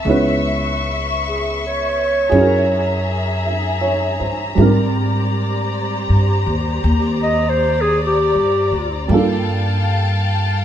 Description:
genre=jazz ballad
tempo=53 BPM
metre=4/4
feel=swing 66% on 8ths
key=unclear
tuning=A4 = 440 Hz
part: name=dark upright piano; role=accompaniment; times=0.0-10.6 s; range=G3 to Fb5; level=-20 LUFS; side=right 2 dB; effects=none
part: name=muted studio string section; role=sustained chords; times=0.0-10.6 s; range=G4 to Db6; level=-22 LUFS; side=left 2 dB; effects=none
part: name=upright bass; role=bass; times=0.1-10.6 s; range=Db2 to Ab2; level=-20 LUFS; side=equal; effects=none
part: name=breathy clarinet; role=melody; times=1.3-9.1 s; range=G4 to Eb5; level=-18 LUFS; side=equal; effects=none
room=wet large studio reverb, RT60 1.4 s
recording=band playing live in one room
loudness=-15 LUFS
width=side -10 dB against mid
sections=0.0-10.6 A section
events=clarinet solo 0.0-10.6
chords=0.1 Dbm7; 2.3 Gb9; 4.6 Abmaj9#11; 9.1 Gm9

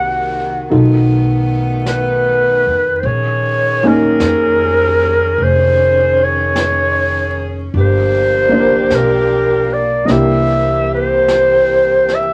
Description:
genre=jazz ballad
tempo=51 BPM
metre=4/4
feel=swing 68% on 8ths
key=unclear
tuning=A4 = 439 Hz
part: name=growling clarinet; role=melody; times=0.0-12.3 s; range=Bb4 to Gb5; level=-16 LUFS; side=equal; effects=none
part: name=warm baby grand piano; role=accompaniment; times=0.0-12.3 s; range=Bb3 to Bb4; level=-21 LUFS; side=equal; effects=none
part: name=warm saxophone section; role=sustained chords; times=0.0-12.3 s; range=C3 to Ab4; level=-23 LUFS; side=equal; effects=none
part: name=upright bass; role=bass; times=0.0-12.3 s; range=F1 to E#2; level=-21 LUFS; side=equal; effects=none
part: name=jazz brush drum kit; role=drums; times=0.7-12.3 s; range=brushed snare drum, hi-hat, snare drum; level=-31 LUFS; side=equal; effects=none
room=wet studio reverb, RT60 0.5 s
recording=vinyl crackle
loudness=-14 LUFS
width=mono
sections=0.0-12.3 A section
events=none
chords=0.0 Cm7b5; 0.7 B7#11; 3.0 Bbm7; 7.7 Gm7; 10.1 C7

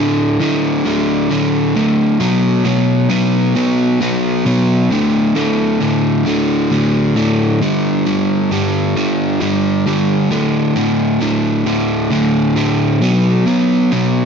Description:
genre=rock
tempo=44 BPM (dotted quarters)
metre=6/8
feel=straight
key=D major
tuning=A4 = 440 Hz
part: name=crunchy overdriven guitar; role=solo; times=0.0-14.3 s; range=D2 to B3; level=-13 LUFS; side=equal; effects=slapback echo
room=moderate huge ambient reverb, RT60 7.3 s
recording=dark, warm production, nothing above 7.8 kHz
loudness=-13 LUFS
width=side -6 dB against mid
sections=0.0-14.3 A section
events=none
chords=0.0 D5; 2.2 B5; 4.9 D5; 7.6 G5; 10.3 D5; 13.0 B5

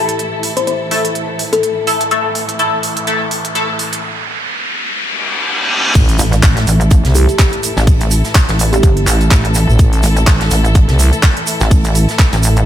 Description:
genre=bass house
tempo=125 BPM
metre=4/4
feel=swing 56% on 16ths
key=unclear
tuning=A4 = 440 Hz
part: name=dark studio string section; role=sustained chords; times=0.0-12.7 s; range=A2 to A4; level=-22 LUFS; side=left 1 dB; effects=sidechain pumping
part: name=band-passed chord stab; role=stabs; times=0.0-3.7 s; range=A3 to A4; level=-17 LUFS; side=left 1 dB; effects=phaser, analog chorus, sidechain pumping, dub echo
part: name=riser, reverse cymbal and impact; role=sound effects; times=2.3-7.9 s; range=none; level=-20 LUFS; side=equal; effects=none
part: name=garage drum kit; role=drums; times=0.1-12.7 s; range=crash cymbal, handclaps, hi-hat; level=-19 LUFS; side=right 1 dB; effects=none
part: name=buzzing kalimba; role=melody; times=0.6-2.0, 7.2-9.4 s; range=G4 to C5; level=-20 LUFS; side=left 2 dB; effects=dub echo
part: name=tube shaker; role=percussion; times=5.9-12.6 s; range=none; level=-24 LUFS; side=right 6 dB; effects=none
part: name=growling FM bass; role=bass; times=6.0-11.1 s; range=A1 to C2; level=-11 LUFS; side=equal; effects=overdrive, sidechain pumping
part: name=electronic kick drum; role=drums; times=6.0-12.3 s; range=none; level=-11 LUFS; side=equal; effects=none
part: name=unplugged drum kit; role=drums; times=6.0-12.6 s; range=hi-hat, snare drum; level=-27 LUFS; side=right 2 dB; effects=none
part: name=pulsing pluck wobble bass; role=bass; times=6.2-12.7 s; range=G1 to A1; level=-12 LUFS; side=equal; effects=chorus, tube saturation, sidechain pumping
room=light reverb, small room ambience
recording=none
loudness=-11 LUFS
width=side -11 dB against mid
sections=0.0-6.0 A section; 6.0-12.7 B section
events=build-up 0.0-6.0; filter sweep on synth stab 0.0-6.0; filter sweep on string section 0.0-6.0; riser 2.3-6.0; reverse cymbal 5.0-6.0; drop 6.0-12.7; impact 6.0-7.9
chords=0.0 A5

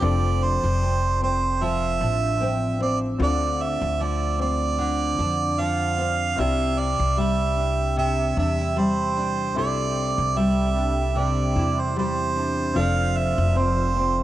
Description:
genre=acoustic pop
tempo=75 BPM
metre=4/4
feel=swing 55% on 16ths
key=C major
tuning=A4 = 440 Hz
part: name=clear harmonica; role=melody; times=0.0-14.2 s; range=C5 to F5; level=-25 LUFS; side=right 5 dB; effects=cassette tape, analog delay
part: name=felt-muted upright piano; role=accompaniment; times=0.0-14.2 s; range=C4 to D5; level=-34 LUFS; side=left 6 dB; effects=cassette tape
part: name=nylon-string guitar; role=accompaniment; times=0.0-14.2 s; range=C3 to E4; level=-26 LUFS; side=left 1 dB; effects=double-tracked left and right, cassette tape
part: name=upright bass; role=bass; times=0.0-14.2 s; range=F1 to F2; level=-25 LUFS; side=left 1 dB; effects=none
room=light reverb, small room ambience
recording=home recording on cassette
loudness=-20 LUFS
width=side -14 dB against mid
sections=0.0-14.2 A section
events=none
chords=0.0 F6; 3.2 Dm7; 6.4 Cadd9; 12.8 F6

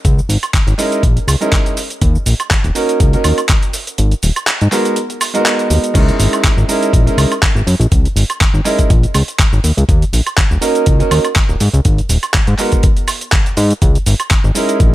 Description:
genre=nu-disco, nu disco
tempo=122 BPM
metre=4/4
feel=swing 55% on 16ths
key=C# dorian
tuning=A4 = 436 Hz
part: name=fat analog bass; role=bass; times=0.0-14.9 s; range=D#1 to G#2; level=-13 LUFS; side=equal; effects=none
part: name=dusty soul sampler-style drum kit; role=drums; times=0.0-14.9 s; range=crash cymbal, handclaps, hi-hat, shaker, woodblock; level=-18 LUFS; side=right 1 dB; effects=overdrive
part: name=electronic kick drum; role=drums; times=0.0-14.9 s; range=none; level=-13 LUFS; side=equal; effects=overdrive
part: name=clear concert grand piano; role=accompaniment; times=0.8-14.9 s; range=G#3 to A#4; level=-17 LUFS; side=right 2 dB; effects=sidechain pumping, analog delay
room=little or no reverb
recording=none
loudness=-11 LUFS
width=side -15 dB against mid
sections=0.0-6.0 A section; 6.0-14.9 B section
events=kick drops out 4.0-6.0; drop 6.0-14.9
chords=0.0 C#m69; 1.8 D#m7; 4.0 G#m9; 6.0 C#m69; 9.6 D#m7; 11.9 G#m; 13.8 C#m69

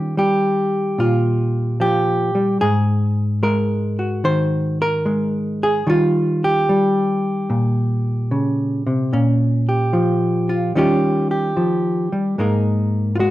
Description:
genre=solo jazz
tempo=74 BPM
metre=4/4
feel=swing 68% on 8ths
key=Eb mixolydian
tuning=A4 = 441 Hz
part: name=hollow-body jazz guitar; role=solo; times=0.0-13.3 s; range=Ab2 to C5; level=-16 LUFS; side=equal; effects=none
room=light reverb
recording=dark, warm production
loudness=-16 LUFS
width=side -15 dB against mid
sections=0.0-13.3 A section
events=none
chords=0.0 Eb9; 2.6 Absus2; 5.9 Eb9; 9.1 Bbm; 10.7 Eb9; 12.4 Absus2

